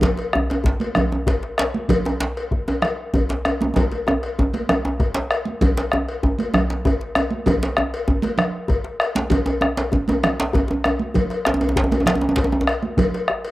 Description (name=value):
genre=west african traditional, West African drum ensemble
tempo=130 BPM (dotted quarters)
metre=12/8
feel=straight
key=none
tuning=none
part: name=bombo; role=percussion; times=0.0-13.4 s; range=none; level=-22 LUFS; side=left 1 dB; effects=none
part: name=congas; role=percussion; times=0.0-13.1 s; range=none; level=-24 LUFS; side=right 3 dB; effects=none
part: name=cowbell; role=percussion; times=0.0-13.5 s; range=none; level=-27 LUFS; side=left 3 dB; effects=none
part: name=djembe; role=percussion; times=0.0-13.5 s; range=none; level=-29 LUFS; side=left 2 dB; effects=none
part: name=djembe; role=percussion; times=0.0-12.8 s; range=none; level=-22 LUFS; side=right 1 dB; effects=none
room=light reverb, small room ambience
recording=home recording on cassette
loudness=-18 LUFS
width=side -17 dB against mid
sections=0.0-5.6 A section; 5.6-13.5 B section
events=drum fill 3.8-5.6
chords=none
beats=| 0.02 0.49 0.96 1.43 | 1.89 2.36 2.83 3.29 | 3.76 4.22 4.69 5.15 | 5.62 6.08 6.54 7.01 | 7.47 7.93 8.39 8.85 | 9.31 9.78 10.24 10.70 | 11.16 11.62 12.07 12.53 | 12.99 13.45